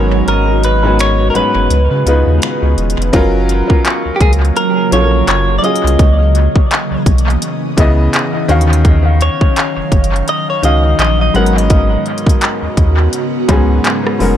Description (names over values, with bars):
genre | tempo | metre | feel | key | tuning
contemporary R&B | 84 BPM | 4/4 | swing 58% on 16ths | F# major | A4 = 440 Hz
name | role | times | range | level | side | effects
direct-recorded clean electric guitar | melody | 0.0-13.0 s | G4 to F#5 | -18 LUFS | equal | wide subtle chorus, dub echo
warm grand piano | accompaniment | 0.0-14.4 s | G#2 to E#5 | -17 LUFS | left 1 dB | dub echo
ethereal airy pad | sustained chords | 0.0-14.4 s | C#3 to E#5 | -20 LUFS | right 2 dB | ensemble chorus, built-in reverb, phaser
saturated sub bass | bass | 0.0-14.4 s | E1 to C#3 | -13 LUFS | equal | none
concert harp | texture | 0.0-11.7 s | C#5 to C#6 | -28 LUFS | left 4 dB | dub echo
trap drum kit | drums | 0.3-14.4 s | finger snaps, handclaps, hi-hat, kick drum, rim click | -15 LUFS | equal | dub echo
room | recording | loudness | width
little or no reverb | echo-heavy mix | -10 LUFS | side -10 dB against mid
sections
0.0-3.1 A section; 3.1-14.4 B section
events
kick muted 0.3-3.1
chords
0.0 G#m11; 1.7 C#9; 3.1 F#maj7; 6.0 C#m9; 8.5 D#m9; 11.3 G#m11